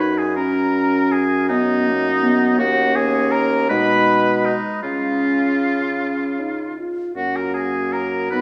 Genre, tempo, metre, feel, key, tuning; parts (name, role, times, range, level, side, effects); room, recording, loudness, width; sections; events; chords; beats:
classical, slow romantic movement for wind quintet; 53 BPM (dotted quarters); 6/8; rubato; A4 = 440 Hz
concert flute; melody; 0.0-8.4 s; D#5 to B5; -30 LUFS; equal
clear oboe; second line; 0.0-8.4 s; D#4 to B4; -24 LUFS; equal
bright clarinet; accompaniment; 0.0-8.4 s; G#3 to D#4; -25 LUFS; equal
dark French horn; accompaniment; 0.0-8.4 s; C#4 to E#4; -27 LUFS; equal
warm bassoon; bass; 0.0-8.4 s; D#2 to C#3; -25 LUFS; equal
moderate concert hall reverb, RT60 2.3 s; -19 LUFS; mono
0.0-8.4 A section
0.4 C#sus2/F#; 2.6 D#5; 3.7 G#m/B; 4.8 C#; 7.2 F#
| 0.36 1.50 | 2.58 3.69 | 4.83 6.00 | 7.17 8.31